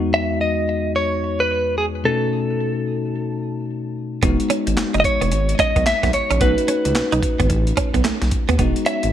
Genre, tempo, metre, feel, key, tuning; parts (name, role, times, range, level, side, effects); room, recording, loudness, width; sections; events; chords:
R&B, new jack swing; 110 BPM; 4/4; swing 63% on 16ths; E major; A4 = 442 Hz
bell-like tine electric piano; accompaniment; 0.0-9.1 s; E2 to F#4; -23 LUFS; left 3 dB; lush chorus
direct-recorded clean electric guitar; melody; 0.1-9.1 s; G#4 to E5; -21 LUFS; equal
direct-recorded clean electric guitar; riff; 4.2-9.1 s; A3 to D#4; -24 LUFS; right 6 dB; ensemble chorus
smooth synth bass; bass; 4.2-9.1 s; E1 to D#2; -21 LUFS; equal
breakbeat sampler-style drum kit; drums; 4.2-9.1 s; handclaps, hi-hat, kick drum, snare drum; -22 LUFS; equal
light reverb; -17 LUFS; side -10 dB against mid
0.0-9.1 A section
0.0 Emaj7; 2.0 B7; 4.2 Emaj7 (rootless); 6.4 B7; 8.6 Emaj7